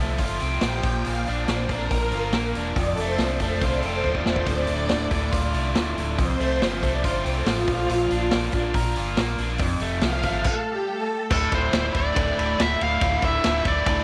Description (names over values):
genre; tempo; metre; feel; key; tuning
classic rock; 140 BPM; 4/4; straight; D minor; A4 = 441 Hz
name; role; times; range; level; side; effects
overdriven electric guitar; riff; 0.0-14.0 s; D2 to Bb4; -30 LUFS; equal; none
fingered electric bass; bass; 0.0-14.0 s; D1 to C2; -30 LUFS; equal; none
vintage drum kit; drums; 0.2-14.0 s; crash cymbal, hi-hat, kick drum, ride cymbal, snare drum; -29 LUFS; equal; none
string machine, full ensemble; sustained chords; 0.6-11.3 s; F4 to G5; -30 LUFS; equal; ensemble chorus
smooth overdriven lead guitar; melody; 11.3-14.0 s; A4 to F5; -26 LUFS; equal; none
room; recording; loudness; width
moderate echo chamber reverb, RT60 1.4 s, small room reverb; none; -23 LUFS; mono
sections
0.0-11.3 A section; 11.3-14.0 B section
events
string machine solo 0.0-11.3; drum fill 4.0-4.5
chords
0.0 F; 0.8 Bb; 2.8 F; 4.5 Dm; 6.2 F; 7.7 Bb; 9.6 F; 10.5 N.C.; 11.3 Dsus2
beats
0.19 0.62 | 1.05 1.48 1.91 2.33 | 2.76 3.19 3.62 4.05 | 4.48 4.91 5.33 5.76 | 6.19 6.62 7.05 7.47 | 7.90 8.33 8.75 9.18 | 9.61 10.03 10.46 10.88 | 11.31 11.74 12.16 12.59 | 13.02 13.44 13.87